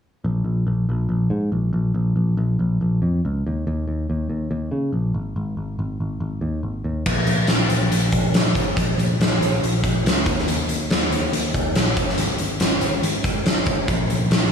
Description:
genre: classic rock.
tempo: 141 BPM.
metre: 4/4.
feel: straight.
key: unclear.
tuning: A4 = 440 Hz.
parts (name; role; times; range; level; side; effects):
picked electric bass; bass; 0.2-14.5 s; Ab1 to Db3; -21 LUFS; equal; none.
big rock drum kit; drums; 7.1-14.4 s; crash cymbal, hi-hat, kick drum, snare drum; -19 LUFS; equal; none.
room: light reverb.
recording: studio reverb.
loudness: -19 LUFS.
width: side -7 dB against mid.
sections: 0.3-7.1 A section; 7.1-14.5 B section.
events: none.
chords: none.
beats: | 0.26 0.68 1.11 1.54 | 1.96 2.39 2.81 3.24 | 3.67 4.09 4.52 4.95 | 5.37 5.80 6.22 6.65 | 7.07 7.50 7.92 8.35 | 8.78 9.20 9.63 10.05 | 10.48 10.90 11.33 11.76 | 12.18 12.61 13.03 13.46 | 13.88 14.31.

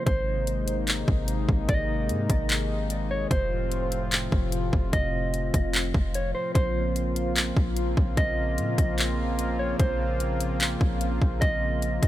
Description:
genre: hip hop, atmospheric cloud-rap.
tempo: 148 BPM.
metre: 4/4.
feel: half-time.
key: Bb minor.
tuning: A4 = 440 Hz.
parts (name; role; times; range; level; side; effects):
mellow electric guitar; melody; 0.0-12.1 s; C5 to Eb5; -31 LUFS; right 2 dB; warbly pitch drift, tape echo.
warm analog pad; sustained chords; 0.0-12.1 s; A2 to F4; -30 LUFS; left 1 dB; chorus, sidechain pumping.
warm 808-style bass; bass; 0.1-12.1 s; F1 to Bb2; -28 LUFS; equal; none.
trap drum kit; drums; 0.1-12.1 s; handclaps, hi-hat, kick drum; -25 LUFS; equal; none.
room: little or no reverb.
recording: none.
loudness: -23 LUFS.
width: side -14 dB against mid.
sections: 0.1-12.1 A section.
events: none.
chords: 0.1 Abadd9; 3.3 F; 6.6 Bbmadd9.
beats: | 0.07 0.47 0.88 1.28 | 1.69 2.09 2.50 2.90 | 3.31 3.71 4.12 4.53 | 4.93 5.34 5.74 6.15 | 6.55 6.96 7.36 7.77 | 8.17 8.58 8.98 9.39 | 9.80 10.20 10.61 11.01 | 11.42 11.82.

